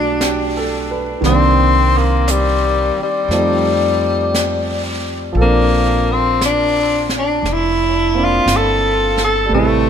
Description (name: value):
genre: jazz ballad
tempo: 58 BPM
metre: 4/4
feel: swing 68% on 8ths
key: unclear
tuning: A4 = 440 Hz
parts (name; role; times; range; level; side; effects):
- warm tenor saxophone; melody; 0.0-9.9 s; G3 to A4; -16 LUFS; left 2 dB; tape echo
- clear grand piano; accompaniment; 0.0-9.9 s; C3 to B4; -20 LUFS; right 3 dB; none
- upright bass; bass; 0.0-9.9 s; F1 to F2; -20 LUFS; equal; none
- jazz brush drum kit; drums; 0.2-9.9 s; brushed snare drum, hi-hat, snare drum; -25 LUFS; right 1 dB; none
room: moderate plate reverb, RT60 3.0 s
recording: dreamy mix soaked in reverb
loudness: -13 LUFS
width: side -8 dB against mid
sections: 0.0-9.9 A section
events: none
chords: 0.0 G69; 1.2 Cm9; 3.3 F9; 5.4 Bbmaj7